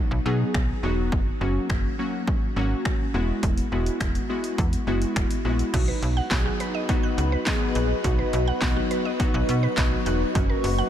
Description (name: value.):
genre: dance-pop.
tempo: 104 BPM.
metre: 4/4.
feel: straight.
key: B major.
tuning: A4 = 440 Hz.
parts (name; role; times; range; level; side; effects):
glassy digital keys; accompaniment; 0.0-10.8 s; F#3 to G#4; -27 LUFS; left 2 dB; chorus, sidechain pumping.
slap-like FM bass; bass; 0.1-10.8 s; E1 to B2; -25 LUFS; equal; sidechain pumping.
punchy analog drum machine; drums; 0.5-10.8 s; crash cymbal, finger snaps, handclaps, hi-hat, kick drum, snare drum; -26 LUFS; equal; none.
granular cloud pad; sustained chords; 6.6-10.9 s; F#4 to C#6; -29 LUFS; equal; built-in reverb, sidechain pumping.
mallet-like synth pluck; arpeggios; 5.7-10.9 s; F#4 to F#6; -32 LUFS; right 4 dB; chorus, sidechain pumping, ping-pong delay.
room: light reverb, digital ambience.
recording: none.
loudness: -22 LUFS.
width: side -10 dB against mid.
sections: 0.0-5.7 A section; 5.7-10.9 B section.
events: none.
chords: 0.0 B; 1.1 F#; 3.1 Eadd9; 5.7 B; 10.4 F#.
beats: 0.55 | 1.12 1.70 2.28 2.85 | 3.43 4.01 4.58 5.16 | 5.74 6.31 6.89 7.47 | 8.04 8.62 9.20 9.78 | 10.35.